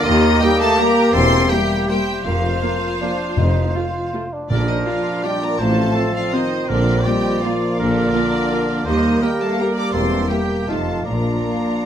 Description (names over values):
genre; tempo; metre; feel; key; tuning
classical; 164 BPM; 3/4; uneven beats, rubato; Bb major; A4 = 440 Hz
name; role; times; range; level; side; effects
rich symphonic violin section; melody; 0.0-11.9 s; D5 to D6; -25 LUFS; equal; none
bright small flute group; second line; 0.0-11.9 s; Bb4 to Bb5; -29 LUFS; left 5 dB; none
clear symphonic violin section; second line; 0.0-11.9 s; D4 to D5; -29 LUFS; left 1 dB; none
warm clarinet; second line; 0.0-11.9 s; F4 to G4; -28 LUFS; left 1 dB; none
warm oboe; second line; 0.0-11.9 s; Eb4 to D5; -28 LUFS; right 3 dB; none
mellow bassoon; accompaniment; 0.0-11.9 s; Bb3 to F4; -26 LUFS; right 2 dB; none
mellow French horn section; sustained chords; 0.0-11.9 s; D3 to D4; -25 LUFS; left 2 dB; none
mellow tuba; bass; 0.1-11.4 s; E1 to Eb2; -26 LUFS; right 4 dB; none
rich symphonic cello section; bass; 0.1-11.4 s; Eb2 to Bb2; -25 LUFS; equal; none
rich symphonic double bass section; bass; 0.1-11.4 s; E1 to Eb2; -25 LUFS; equal; none
warm symphonic viola section; accompaniment; 0.4-11.8 s; A3 to G4; -26 LUFS; equal; none
warm trombone section; sustained chords; 0.4-11.9 s; F3 to Eb4; -26 LUFS; right 2 dB; none
timpani; percussion; 3.4-7.2 s; F2 to Bb2; -24 LUFS; left 1 dB; none
room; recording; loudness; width
wet stone room reverb, RT60 1.1 s; none; -16 LUFS; side -9 dB against mid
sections
0.0-11.9 A section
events
none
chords
0.1 Eb; 1.1 C7/E; 2.2 Fsus4; 3.4 F; 4.5 Bb; 5.6 F7/A; 6.7 Bb; 8.9 Eb; 9.9 C7/E; 10.7 F7; 11.1 Bb